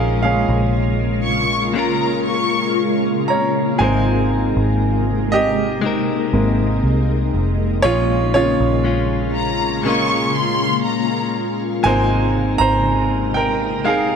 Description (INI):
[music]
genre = pop ballad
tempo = 60 BPM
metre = 4/4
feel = straight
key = unclear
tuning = A4 = 440 Hz
[part]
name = clear baby grand piano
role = accompaniment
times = 0.0-14.2 s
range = C3 to Bb5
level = -20 LUFS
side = right 2 dB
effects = none
[part]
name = shimmering ambient pad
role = sustained chords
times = 0.0-14.2 s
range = C3 to F4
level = -22 LUFS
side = left 1 dB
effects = chorus, built-in reverb, phaser
[part]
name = direct-recorded clean electric guitar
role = arpeggios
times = 0.0-14.2 s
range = Bb2 to Bb4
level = -24 LUFS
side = left 7 dB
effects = vibrato effect
[part]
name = vintage muted fingered electric bass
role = bass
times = 0.0-14.2 s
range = F1 to C2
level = -20 LUFS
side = equal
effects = none
[part]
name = warm studio violin section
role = second line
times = 1.2-3.0, 9.4-11.6 s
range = Bb5 to Db6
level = -22 LUFS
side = left 2 dB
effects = ping-pong delay
[sound]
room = light reverb, small room ambience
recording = none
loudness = -15 LUFS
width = side -6 dB against mid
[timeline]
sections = 0.0-14.2 A section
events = grand piano solo 0.0-14.2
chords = 0.0 Bbm7; 3.8 Abadd9; 7.8 Bbm7; 11.8 Abadd9